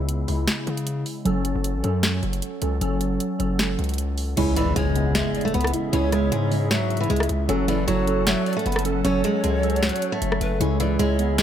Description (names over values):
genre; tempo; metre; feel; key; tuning
hip hop, trap; 154 BPM; 4/4; half-time; C# minor; A4 = 440 Hz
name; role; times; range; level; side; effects
glassy digital keys; accompaniment; 0.0-11.4 s; C#3 to A4; -26 LUFS; right 1 dB; chorus, low-pass filter
hard-hitting 808-style bass; bass; 0.0-11.4 s; F#1 to C#3; -25 LUFS; equal; none
trap drum kit; drums; 0.1-11.4 s; crash cymbal, hi-hat, rim click, snare drum; -26 LUFS; left 1 dB; none
picked steel-string acoustic guitar; melody; 4.4-11.4 s; E3 to C#4; -25 LUFS; right 1 dB; low-pass filter
hollow soft pad; sustained chords; 4.4-11.4 s; C#3 to A5; -32 LUFS; left 1 dB; ensemble chorus
impact; sound effects; 4.4-5.9 s; none; -32 LUFS; equal; none
breathy pan flute; second line; 4.6-11.4 s; B4 to E5; -30 LUFS; equal; tape echo
room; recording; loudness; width
little or no reverb; none; -20 LUFS; side -9 dB against mid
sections
0.0-4.4 A section; 4.4-11.4 B section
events
impact 4.4-5.9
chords
0.0 C#m; 1.3 F#m; 4.4 C#m; 7.5 F#m; 10.6 C#m